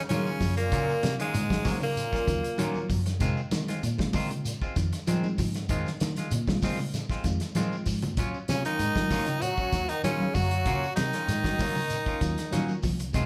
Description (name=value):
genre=afrobeat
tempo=97 BPM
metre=4/4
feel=straight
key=Eb dorian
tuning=A4 = 440 Hz
part: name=bright trombone section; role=second line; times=0.0-2.9, 8.5-12.8 s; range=Ab2 to Gb3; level=-40 LUFS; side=equal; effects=none
part: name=raspy tenor saxophone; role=melody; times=0.1-2.9, 8.5-12.8 s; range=Ab3 to Gb4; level=-32 LUFS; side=equal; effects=none
part: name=brilliant trombone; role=second line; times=0.1-2.9, 8.5-12.8 s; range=Ab2 to Gb3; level=-42 LUFS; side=equal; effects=none
part: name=clean electric guitar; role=arpeggios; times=0.1-13.3 s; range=C3 to Ab3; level=-38 LUFS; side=equal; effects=none
part: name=semi-hollow electric guitar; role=stabs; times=0.1-13.3 s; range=Eb3 to F4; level=-39 LUFS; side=equal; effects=none
part: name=fingered electric bass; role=bass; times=0.1-13.3 s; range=C2 to F3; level=-34 LUFS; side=equal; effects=none
part: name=warm soul drum kit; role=drums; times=0.1-13.3 s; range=hi-hat, kick drum, snare drum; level=-35 LUFS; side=equal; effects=none
part: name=congas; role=percussion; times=0.1-13.3 s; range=none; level=-37 LUFS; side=equal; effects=none
part: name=shekere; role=percussion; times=0.1-13.3 s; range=none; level=-42 LUFS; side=equal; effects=none
part: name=reed electric piano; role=accompaniment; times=0.2-13.3 s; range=Gb3 to F5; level=-40 LUFS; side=equal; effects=none
room=moderate large studio reverb, RT60 1.4 s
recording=band playing live in one room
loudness=-28 LUFS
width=mono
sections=0.0-13.3 A section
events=drum fill 7.6-8.2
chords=0.0 Ebm9; 3.2 Fm7; 8.2 Ebm9